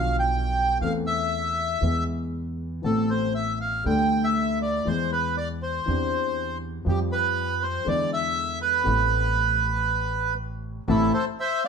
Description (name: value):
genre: tango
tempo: 119 BPM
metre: 4/4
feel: rubato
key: A minor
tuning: A4 = 441 Hz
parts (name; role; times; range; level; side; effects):
- bandoneon; melody; 0.0-11.7 s; E4 to G5; -25 LUFS; right 2 dB; none
- warm concert grand piano; accompaniment; 0.0-11.1 s; A1 to A4; -28 LUFS; left 2 dB; none
- upright bass; bass; 0.0-11.1 s; A1 to F2; -30 LUFS; right 2 dB; none
room: moderate large studio reverb, RT60 0.9 s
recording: band playing live in one room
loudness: -22 LUFS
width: side -6 dB against mid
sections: 0.0-10.9 A section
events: none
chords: 0.0 Bdim; 0.8 Am/E; 1.8 E; 2.8 Amadd9; 3.9 Dsus4; 4.9 E; 5.9 Cadd9/E; 6.9 Fsus2; 7.9 E7; 8.9 Amadd9; 10.9 Am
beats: 0.33 | 0.82 1.33 1.83 2.34 | 2.84 3.35 3.86 4.37 | 4.87 5.37 5.87 6.37 | 6.87 7.37 7.86 8.36 | 8.86 9.37 9.87 10.38 | 10.89 11.39